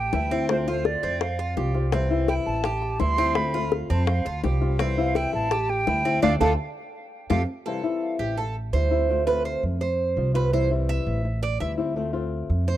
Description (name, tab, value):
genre	latin, Cuban son and guajira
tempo	168 BPM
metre	4/4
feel	straight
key	unclear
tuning	A4 = 442 Hz
part	hollow concert flute	melody	0.0-7.4 s	C5 to C6	-28 LUFS	right 2 dB	tape echo
part	Cuban tres	arpeggios	0.0-12.8 s	C4 to E5	-28 LUFS	right 4 dB	none
part	upright bass	bass	0.0-12.8 s	A1 to F2	-26 LUFS	right 1 dB	none
part	flamenco guitar	accompaniment	0.1-12.7 s	C3 to F4	-28 LUFS	left 5 dB	none
part	bongos	percussion	0.1-7.4 s	none	-28 LUFS	left 8 dB	none
room	small room ambience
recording	dry, close 1970s-style studio recording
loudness	-22 LUFS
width	side -13 dB against mid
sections	0.0-7.7 A section; 7.7-12.8 B section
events	band accent 6.2-7.7; Cuban tres solo 7.7-12.8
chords	0.5 Dm7; 1.2 Fsus2; 1.9 C; 2.6 Am7; 3.4 Dm7; 4.1 Fsus2; 4.8 C; 5.5 Am7; 6.2 Dm7; 6.9 Fadd9; 7.7 C; 8.4 Am7; 9.1 Dm7; 9.8 Fsus2; 10.5 C; 11.2 Am7; 12.0 Dm7